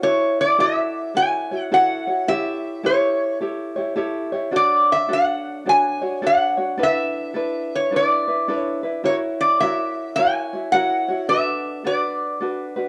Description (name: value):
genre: Hawaiian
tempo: 106 BPM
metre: 4/4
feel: swing 64% on 8ths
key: F# minor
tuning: A4 = 440 Hz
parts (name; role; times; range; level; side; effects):
- lap resonator guitar; melody; 0.0-12.4 s; C#5 to G#5; -21 LUFS; equal; cassette tape
- tenor ukulele; accompaniment; 0.0-12.9 s; D4 to C#5; -27 LUFS; equal; plate reverb
room: moderate booth ambience, RT60 0.3 s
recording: home recording on cassette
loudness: -21 LUFS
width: mono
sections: 0.0-12.9 A section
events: none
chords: 0.0 F#m7; 2.3 A7; 4.5 Dmaj7; 6.8 E7sus4; 9.0 F#7; 11.3 Bm7